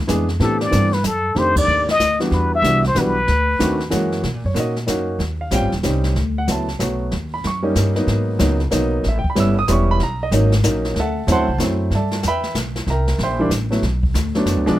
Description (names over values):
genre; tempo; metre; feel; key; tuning
jazz, small-group swing and bop; 188 BPM; 3/4; swing 64% on 8ths; unclear; A4 = 440 Hz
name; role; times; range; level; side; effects
upright bass; bass; 0.0-14.8 s; D#1 to B2; -20 LUFS; equal; none
warm grand piano; accompaniment; 0.1-14.8 s; Eb3 to E6; -20 LUFS; right 1 dB; none
jazz brush drum kit; drums; 0.1-14.8 s; brushed snare drum, hi-hat, kick drum, ride cymbal, snare drum; -26 LUFS; left 1 dB; none
trumpet with plunger mute; melody; 0.4-3.9 s; A4 to E5; -18 LUFS; left 2 dB; none
room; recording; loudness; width
little or no reverb; close, detailed microphones; -16 LUFS; side -14 dB against mid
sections
0.0-4.2 A section; 4.2-11.9 B section; 11.9-14.8 B section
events
band accent 1.5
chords
0.4 Am11; 1.4 F13; 2.3 Em7; 3.3 D7b9; 3.9 F#9; 4.2 Bmaj9 (rootless); 5.2 D#13; 6.2 D69; 7.1 D#7; 8.1 G#m9; 9.0 A9; 10.0 Bmaj9; 11.0 D9; 11.9 G69; 12.9 C7; 13.8 Bm7